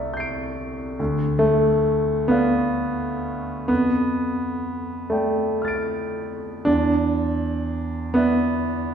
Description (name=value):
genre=classical, impressionist solo piano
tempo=37-47 BPM (dotted quarters)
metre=6/8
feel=rubato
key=unclear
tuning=A4 = 440 Hz
part: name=warm grand piano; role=solo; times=0.0-8.9 s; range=C2 to D7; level=-20 LUFS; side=equal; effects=none
room=wet scoring stage reverb, RT60 1.6 s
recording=heard from further back in the room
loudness=-20 LUFS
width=side -8 dB against mid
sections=0.0-8.9 A section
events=none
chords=0.0 C69; 1.0 Dm6; 3.7 F69; 6.7 E7(no3)